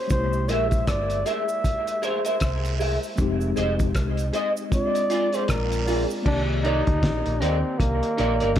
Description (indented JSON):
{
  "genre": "lovers rock reggae",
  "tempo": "78 BPM",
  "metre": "4/4",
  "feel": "swing 60% on 16ths",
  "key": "C minor",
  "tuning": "A4 = 436 Hz",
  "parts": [
    { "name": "breathy flugelhorn", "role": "melody", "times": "0.0-8.6 s", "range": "Bb3 to E5", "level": "-27 LUFS", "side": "equal", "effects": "tape echo" },
    { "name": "mellow tine electric piano", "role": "accompaniment", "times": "0.0-8.6 s", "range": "Eb3 to D5", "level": "-30 LUFS", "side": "left 3 dB", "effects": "medium stereo tremolo, dub echo" },
    { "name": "hollow-body short-scale fingered electric bass", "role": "bass", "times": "0.1-8.6 s", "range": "F1 to Eb2", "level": "-26 LUFS", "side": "equal", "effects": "none" },
    { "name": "cloth-damped thuddy drum kit", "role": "drums", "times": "0.1-8.6 s", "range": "crash cymbal, hi-hat, kick drum, rim click, snare drum", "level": "-26 LUFS", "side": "equal", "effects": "none" },
    { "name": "cabasa and guiro", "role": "percussion", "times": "0.1-6.2 s", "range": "none", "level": "-43 LUFS", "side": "right 8 dB", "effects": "dub echo" },
    { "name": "electric guitar through a small old amp", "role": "stabs", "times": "0.5-8.5 s", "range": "Eb4 to E5", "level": "-28 LUFS", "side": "right 2 dB", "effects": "ensemble chorus, dub echo" }
  ],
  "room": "light reverb, small room ambience",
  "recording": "none",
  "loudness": "-21 LUFS",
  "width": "side -10 dB against mid",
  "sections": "0.0-6.3 A section; 6.3-8.6 B section",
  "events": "none",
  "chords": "0.1 C7b13; 3.2 Fm7; 4.7 Bb7; 6.3 Cm9"
}